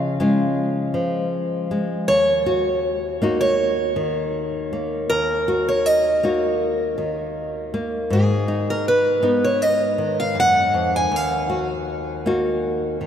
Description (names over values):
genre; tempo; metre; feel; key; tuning
acoustic folk-pop ballad; 80 BPM; 4/4; straight; unclear; A4 = 436 Hz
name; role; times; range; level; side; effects
picked acoustic archtop guitar; melody; 0.0-12.3 s; G#4 to G#5; -21 LUFS; right 1 dB; none
nylon-string guitar; accompaniment; 0.0-13.1 s; D#2 to F#4; -22 LUFS; left 2 dB; none
room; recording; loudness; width
wet cathedral reverb, RT60 6.2 s; in a vast, echoing space; -18 LUFS; side -9 dB against mid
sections
0.0-13.1 A section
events
none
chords
0.0 C#; 2.1 D#m; 8.1 G#m; 11.1 D#madd9